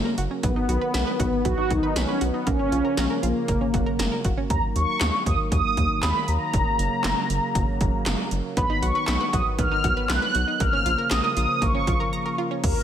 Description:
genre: synth-pop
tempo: 118 BPM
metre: 4/4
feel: straight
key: unclear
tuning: A4 = 440 Hz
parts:
  - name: mellow synth brass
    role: melody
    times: 0.0-12.8 s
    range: A#3 to F#6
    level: -25 LUFS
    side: equal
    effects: chorus, tape echo
  - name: warm analog pad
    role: sustained chords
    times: 0.0-12.8 s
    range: C#3 to B3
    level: -30 LUFS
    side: right 1 dB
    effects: chorus
  - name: rubbery square bass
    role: bass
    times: 0.0-12.7 s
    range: F#1 to D#2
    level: -26 LUFS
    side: equal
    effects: none
  - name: analog pluck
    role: arpeggios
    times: 0.1-4.4, 8.6-12.6 s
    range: A#3 to B5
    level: -32 LUFS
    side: right 3 dB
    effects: chorus, tape echo
  - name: 80s electronic pad drums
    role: drums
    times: 0.2-12.8 s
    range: crash cymbal, handclaps, hi-hat, kick drum, snare drum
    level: -26 LUFS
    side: equal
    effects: gated reverb
room: light reverb, digital ambience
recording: none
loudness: -21 LUFS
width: side -9 dB against mid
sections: 0.0-4.5 A section; 4.5-12.6 B section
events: break 12.1-12.6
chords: 0.4 B; 2.5 A#m; 3.5 F#; 4.5 D#m; 6.5 F#; 8.6 B; 10.6 A#m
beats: | 0.43 0.94 1.45 1.96 | 2.47 2.98 3.48 3.99 | 4.50 5.01 5.52 6.03 | 6.54 7.04 7.55 8.06 | 8.57 9.08 9.59 10.10 | 10.60 11.11 11.62 12.13 | 12.64

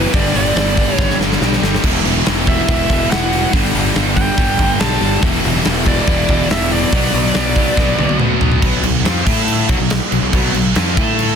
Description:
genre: hard rock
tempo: 141 BPM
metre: 4/4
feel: straight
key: B minor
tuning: A4 = 442 Hz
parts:
  - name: biting lead guitar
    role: melody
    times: 0.0-8.2 s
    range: C#5 to A5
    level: -20 LUFS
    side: right 2 dB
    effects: overdrive, digital delay
  - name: cranked stack guitar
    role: riff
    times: 0.0-11.4 s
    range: E2 to A4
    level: -21 LUFS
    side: left 12 dB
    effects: overdrive
  - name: distorted electric guitar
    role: riff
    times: 0.0-8.6 s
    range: B2 to G4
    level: -22 LUFS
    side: right 1 dB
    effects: distortion
  - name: scooped high-gain guitar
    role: riff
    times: 0.0-11.4 s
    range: E2 to A4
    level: -22 LUFS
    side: right 15 dB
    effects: distortion
  - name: fuzz fingered electric bass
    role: bass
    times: 0.0-11.4 s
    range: E1 to A2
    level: -20 LUFS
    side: equal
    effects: overdrive
  - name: huge arena drum kit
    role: drums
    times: 0.1-11.3 s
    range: crash cymbal, hi-hat, kick drum, snare drum, toms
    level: -17 LUFS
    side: equal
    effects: none
room: light reverb, small room ambience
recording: dense, heavily limited modern master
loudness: -12 LUFS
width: side -7 dB against mid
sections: 0.0-8.6 A section; 8.6-11.4 B section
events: drum fill 1.0-1.8, 7.8-8.6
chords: 0.1 G; 1.8 Em; 3.5 G; 5.2 Em; 6.9 Bm; 8.6 B5; 9.3 A5; 9.7 B5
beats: | 0.14 0.56 0.99 1.41 | 1.83 2.26 2.68 3.11 | 3.53 3.95 4.38 4.80 | 5.23 5.65 6.08 6.50 | 6.93 7.35 7.78 8.20 | 8.63 9.05 9.48 9.91 | 10.33 10.76 11.19

